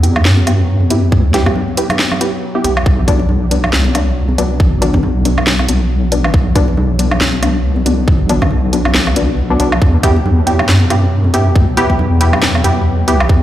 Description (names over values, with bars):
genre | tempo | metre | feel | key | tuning
deep dubstep | 138 BPM | 4/4 | swing 57% on 16ths, half-time | B phrygian | A4 = 440 Hz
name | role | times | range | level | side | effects
bowed-like drone | sustained chords | 0.0-13.4 s | B2 to F#3 | -22 LUFS | left 2 dB | built-in reverb
filtered dub chord stab | stabs | 0.0-13.3 s | F#3 to G4 | -18 LUFS | left 1 dB | chorus, dub echo
deep soft wobble bass | bass | 0.0-13.4 s | A1 to F#2 | -14 LUFS | equal | chorus
garage drum kit | drums | 0.0-13.3 s | handclaps, hi-hat, snare drum, woodblock | -18 LUFS | right 1 dB | overdrive
congas | percussion | 0.2-12.6 s | none | -23 LUFS | equal | dub echo
electronic kick drum | drums | 1.1-13.4 s | none | -11 LUFS | equal | overdrive
room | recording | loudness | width
light reverb | played on a big sound system in a bare room, large studio reverb | -10 LUFS | side -13 dB against mid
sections
0.0-13.4 A section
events
filter sweep on synth stab 0.0-13.4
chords
0.0 Em; 2.9 Bm; 9.8 Em